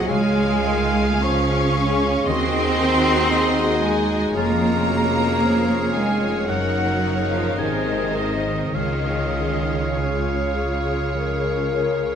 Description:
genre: classical, slow romantic movement for symphony orchestra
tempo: 50-59 BPM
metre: 4/4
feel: rubato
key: Db major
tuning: A4 = 441 Hz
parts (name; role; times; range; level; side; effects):
- rich symphonic violin section; melody; 0.0-12.2 s; C5 to F5; -31 LUFS; left 2 dB; none
- bright clarinet; second line; 0.0-12.2 s; Eb4 to Bb4; -31 LUFS; left 2 dB; none
- clear oboe; second line; 0.0-12.2 s; Db5 to Ab5; -30 LUFS; right 2 dB; none
- hollow small flute group; second line; 0.0-12.2 s; Db5 to Db6; -30 LUFS; left 1 dB; none
- warm symphonic violin section; second line; 0.0-12.2 s; Db5 to Db6; -30 LUFS; equal; none
- clear bassoon; accompaniment; 0.0-12.2 s; C3 to Ab3; -29 LUFS; right 1 dB; none
- rich symphonic viola section; accompaniment; 0.0-12.2 s; Eb4 to Bb4; -30 LUFS; equal; none
- mellow French horn section; sustained chords; 0.0-12.2 s; C4 to Bb4; -29 LUFS; left 5 dB; none
- concert harp; arpeggios; 0.0-12.2 s; F2 to Ab5; -30 LUFS; left 8 dB; none
- clear symphonic cello section; bass; 0.0-12.2 s; Db3 to Db4; -24 LUFS; right 2 dB; none
- rich symphonic double bass section; bass; 0.0-12.2 s; F1 to Eb2; -26 LUFS; right 2 dB; none
room: wet recital hall reverb, RT60 1.7 s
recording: none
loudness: -18 LUFS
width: side -8 dB against mid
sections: 0.0-12.2 A section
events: none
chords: 0.1 Db; 2.3 Ab7/Eb; 4.4 Db/F; 6.5 Ebm7/Gb; 7.6 Ab; 8.7 Db

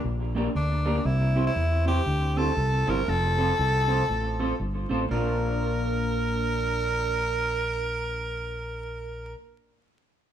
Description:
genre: ska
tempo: 119 BPM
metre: 4/4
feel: swing 60% on 8ths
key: Bb major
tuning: A4 = 440 Hz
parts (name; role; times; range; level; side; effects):
- fingered electric bass; bass; 0.0-9.3 s; F1 to E2; -27 LUFS; equal; none
- electric guitar through a small old amp; accompaniment; 0.3-9.4 s; Bb3 to C5; -30 LUFS; right 1 dB; tape echo
- raspy tenor saxophone; melody; 0.6-9.3 s; D4 to Bb4; -28 LUFS; right 1 dB; none
room: wet studio reverb, RT60 0.9 s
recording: band playing live in one room, vinyl crackle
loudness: -24 LUFS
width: side -10 dB against mid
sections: 0.0-5.1 A section; 5.1-9.1 B section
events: none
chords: 0.0 Gm; 1.1 C; 3.1 F; 5.1 Bb

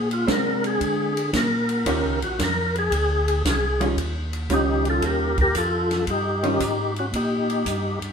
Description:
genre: soul jazz organ trio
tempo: 114 BPM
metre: 4/4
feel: swing 68% on 8ths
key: Eb mixolydian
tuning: A4 = 440 Hz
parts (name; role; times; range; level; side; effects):
- percussive tonewheel organ; melody; 0.0-8.0 s; Db4 to Bb4; -24 LUFS; left 1 dB; slow rotary speaker, overdrive, chorus vibrato
- mellow tonewheel organ; bass; 0.0-8.1 s; Bb1 to D3; -26 LUFS; equal; chorus vibrato, slow rotary speaker
- vintage drum kit; drums; 0.1-8.1 s; hi-hat, kick drum, ride cymbal, snare drum; -29 LUFS; equal; none
- vintage hollow-body jazz guitar; accompaniment; 0.3-6.6 s; Eb3 to G4; -25 LUFS; right 2 dB; none
room: wet stone room reverb, RT60 1.2 s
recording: band playing live in one room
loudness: -20 LUFS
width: side -6 dB against mid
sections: 0.0-4.0 A section; 4.0-8.1 B section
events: tonewheel organ solo 0.0-4.0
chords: 0.0 Bb9; 1.9 Eb9; 2.9 Fm13; 4.0 Eb9

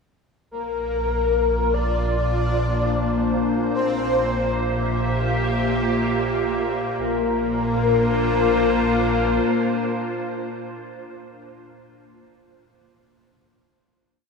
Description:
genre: ambient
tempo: free time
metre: none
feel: none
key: Bb lydian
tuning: A4 = 440 Hz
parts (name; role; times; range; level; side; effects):
- breathy flute-like synth lead; melody; 0.5-10.5 s; Bb4 to D5; -23 LUFS; left 4 dB; ensemble chorus, diffuse ambient delay
- evolving wavetable pad; sustained chords; 1.4-11.0 s; Bb2 to E5; -23 LUFS; equal; ensemble chorus, built-in reverb
- warm sub bass; bass; 0.5-9.4 s; Bb1; -29 LUFS; equal; none
- bowed-like drone; drone; 4.8-10.5 s; Bb3 to F4; -27 LUFS; left 1 dB; built-in reverb
room: wet scoring stage reverb, RT60 2.2 s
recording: small room ambience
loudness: -19 LUFS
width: side -4 dB against mid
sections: 0.5-7.0 A section; 7.0-10.2 final chord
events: fade-out on sub bass 0.5-7.0; filter sweep on ambient pad 0.5-7.0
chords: 0.5 Bbadd9; 3.7 C/Bb; 7.0 Bbadd9

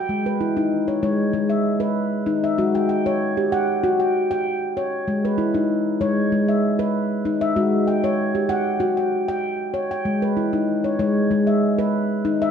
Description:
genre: world meditative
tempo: 96 BPM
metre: 4/4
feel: straight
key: G# minor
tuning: A4 = 440 Hz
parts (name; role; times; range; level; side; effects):
- handpan; solo; 0.0-12.5 s; G#3 to G5; -19 LUFS; left 1 dB; none
room: wet scoring stage reverb, RT60 1.7 s, small room ambience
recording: none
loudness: -19 LUFS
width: side -7 dB against mid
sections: 0.1-12.5 A section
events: none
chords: 0.1 G#m; 2.6 F#5/G#; 5.1 G#m; 7.6 F#5/G#; 10.1 G#m

